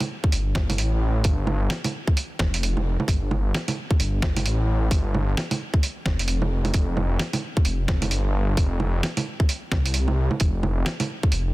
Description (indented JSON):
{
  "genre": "future garage",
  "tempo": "131 BPM",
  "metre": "4/4",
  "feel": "swing 61% on 16ths",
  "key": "unclear",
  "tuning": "A4 = 438 Hz",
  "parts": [
    { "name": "lo-fi sampler-style drum kit", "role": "drums", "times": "0.0-11.4 s", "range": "bongos, hi-hat, snare drum", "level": "-27 LUFS", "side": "right 2 dB", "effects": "overdrive" },
    { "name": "electronic kick drum", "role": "drums", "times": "0.2-11.3 s", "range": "none", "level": "-21 LUFS", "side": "equal", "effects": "none" },
    { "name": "swelling detuned saw bass", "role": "bass", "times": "0.3-11.5 s", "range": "F1 to C2", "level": "-23 LUFS", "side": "equal", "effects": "sidechain pumping" }
  ],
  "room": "digital ambience",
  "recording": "dense, heavily limited modern master",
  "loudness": "-21 LUFS",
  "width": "side -19 dB against mid",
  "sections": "0.0-11.5 A section",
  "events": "none",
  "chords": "none",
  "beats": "0.33 0.79 | 1.25 1.70 2.16 2.62 | 3.08 3.54 3.99 4.45 | 4.91 5.37 5.83 6.28 | 6.74 7.20 7.66 8.12 | 8.57 9.03 9.49 9.95 | 10.41 10.86 11.32"
}